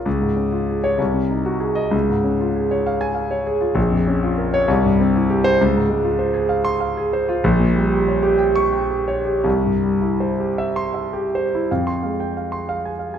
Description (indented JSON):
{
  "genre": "classical, romantic character piece for solo piano",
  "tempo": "51-68 BPM (dotted quarters)",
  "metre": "6/8",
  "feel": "rubato",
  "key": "F minor from 3.8 s",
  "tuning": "A4 = 441 Hz",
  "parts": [
    { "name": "warm concert grand piano", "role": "solo", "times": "0.0-13.2 s", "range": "Bb1 to Db6", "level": "-17 LUFS", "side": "equal", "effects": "none" }
  ],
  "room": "wet recital hall reverb, RT60 1.3 s",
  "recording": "none",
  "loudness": "-17 LUFS",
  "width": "side -8 dB against mid",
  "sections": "0.0-11.7 A section; 11.7-13.2 B section",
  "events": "none",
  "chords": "0.1 Db; 1.0 Ab7/C; 1.9 Db; 3.8 Bbm; 4.7 C; 5.6 Dbmaj7; 7.4 Gdim/Bb; 9.5 C; 11.7 Fm",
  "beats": "| 0.06 0.99 | 1.93 2.87 | 3.77 4.68 | 5.59 6.48 | 7.43 8.39 | 9.46 10.58 | 11.69 12.65"
}